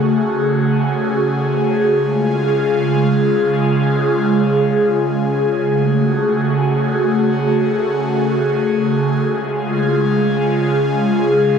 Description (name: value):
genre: hip hop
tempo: free time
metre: none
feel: none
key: F# harmonic minor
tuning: A4 = 441 Hz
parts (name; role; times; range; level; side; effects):
- airy breathy pad; solo; 0.0-11.6 s; C#3 to G#4; -14 LUFS; equal; chorus, phaser, dub echo
room: light reverb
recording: echo-heavy mix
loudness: -14 LUFS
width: side -7 dB against mid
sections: 0.0-11.6 A section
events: none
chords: 0.0 F#madd9; 2.0 C#; 5.6 F#madd9; 9.3 C#